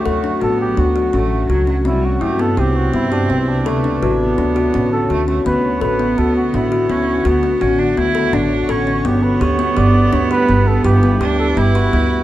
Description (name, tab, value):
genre	contemporary instrumental, chamber music in an uneven meter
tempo	167 BPM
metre	5/4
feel	straight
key	D major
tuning	A4 = 439 Hz
part	breathy flugelhorn	melody	0.0-12.2 s	C4 to D5	-22 LUFS	right 2 dB	none
part	clear cello	second line	0.0-12.2 s	F#3 to E4	-21 LUFS	right 4 dB	none
part	granular cloud pad	sustained chords	0.0-12.2 s	C3 to C#5	-24 LUFS	left 1 dB	built-in reverb
part	kalimba	arpeggios	0.1-12.2 s	B3 to A4	-18 LUFS	left 3 dB	none
part	upright bass	bass	0.1-12.2 s	G1 to G2	-19 LUFS	right 1 dB	none
part	large celesta	texture	1.1-4.5 s	A4 to B4	-29 LUFS	left 7 dB	none
room	light reverb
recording	none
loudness	-13 LUFS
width	side -14 dB against mid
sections	0.0-5.5 A section; 5.5-12.2 B section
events	none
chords	0.0 Dmaj7; 1.9 Cmaj7; 3.7 Dmaj7; 9.1 G6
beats	| 0.06 0.42 0.78 1.14 1.50 | 1.86 2.22 2.58 2.94 3.30 | 3.66 4.02 4.38 4.74 5.10 | 5.46 5.82 6.18 6.54 6.90 | 7.26 7.62 7.97 8.33 8.69 | 9.05 9.41 9.77 10.13 10.49 | 10.85 11.21 11.57 11.93